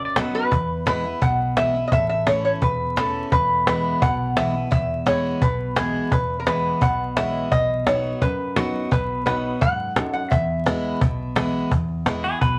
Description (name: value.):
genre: honky-tonk and classic country.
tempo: 172 BPM.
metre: 4/4.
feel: straight.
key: E major.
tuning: A4 = 441 Hz.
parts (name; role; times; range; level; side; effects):
lap resonator guitar; melody; 0.0-11.3 s; F#4 to F#5; -25 LUFS; equal; none.
pedal steel guitar; second line; 0.0-0.3, 12.2-12.6 s; G#4 to D5; -27 LUFS; equal; none.
picked steel-string acoustic guitar; accompaniment; 0.0-12.6 s; E2 to F#4; -29 LUFS; equal; none.
vintage muted fingered electric bass; bass; 0.0-12.6 s; E1 to F#2; -33 LUFS; equal; none.
cajon; drums; 0.2-12.5 s; none; -25 LUFS; equal; none.
warm upright piano; accompaniment; 6.5-11.6 s; D#4 to C#5; -37 LUFS; equal; none.
room: wet club ambience, RT60 0.5 s.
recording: vinyl crackle.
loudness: -22 LUFS.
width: mono.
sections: 0.5-11.7 A section.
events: none.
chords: 0.0 B; 0.5 E; 1.9 A; 3.3 E; 7.5 B; 10.3 E.